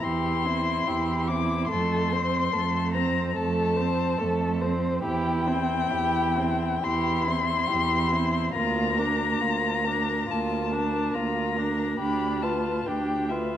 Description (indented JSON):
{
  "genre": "classical, slow romantic movement for string quartet",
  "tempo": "70 BPM",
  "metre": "4/4",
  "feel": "uneven beats, rubato",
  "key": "F major",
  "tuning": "A4 = 441 Hz",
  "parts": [
    { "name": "muted violin", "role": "melody", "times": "0.0-13.6 s", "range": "E5 to D6", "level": "-28 LUFS", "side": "left 6 dB", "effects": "none" },
    { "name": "muted violin", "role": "second line", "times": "0.0-13.6 s", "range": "E4 to C5", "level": "-31 LUFS", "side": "left 2 dB", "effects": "none" },
    { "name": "muted viola", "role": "accompaniment", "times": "0.0-13.6 s", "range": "A3 to F4", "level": "-30 LUFS", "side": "right 3 dB", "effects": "none" },
    { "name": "muted cello", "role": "bass", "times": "0.0-13.6 s", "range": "D2 to F2", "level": "-29 LUFS", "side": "right 3 dB", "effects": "none" }
  ],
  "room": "wet recital hall reverb, RT60 1.6 s",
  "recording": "none",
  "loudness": "-23 LUFS",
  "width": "side -10 dB against mid",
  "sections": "0.0-13.6 A section",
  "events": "none",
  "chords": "0.0 C/E; 1.7 F; 5.0 C/E; 8.6 Bb/D; 12.0 G7/D"
}